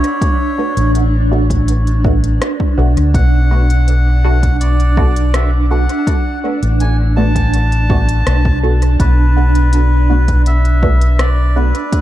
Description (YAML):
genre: ambient dub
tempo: 82 BPM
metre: 4/4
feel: straight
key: B minor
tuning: A4 = 440 Hz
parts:
  - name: melodica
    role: melody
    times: 0.0-12.0 s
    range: B4 to A5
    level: -22 LUFS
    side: equal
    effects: dub echo
  - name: granular cloud pad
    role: sustained chords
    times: 0.0-12.0 s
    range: D4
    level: -21 LUFS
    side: right 2 dB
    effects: built-in reverb
  - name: organic electronic drum kit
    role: drums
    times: 0.0-12.0 s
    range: hi-hat, rim click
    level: -26 LUFS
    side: left 1 dB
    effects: dub echo
  - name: electronic kick drum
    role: drums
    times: 0.2-12.0 s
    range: none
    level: -16 LUFS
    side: equal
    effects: overdrive
  - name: filtered dub chord stab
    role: stabs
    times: 0.6-11.7 s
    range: A3 to F#4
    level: -23 LUFS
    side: right 1 dB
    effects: phaser, ensemble chorus, dub echo
  - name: fingered electric bass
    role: bass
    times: 0.8-11.7 s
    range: A1 to D2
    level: -12 LUFS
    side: equal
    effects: none
room: little or no reverb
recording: none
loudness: -11 LUFS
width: side -13 dB against mid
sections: 0.0-12.0 A section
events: none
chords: 0.0 Bm7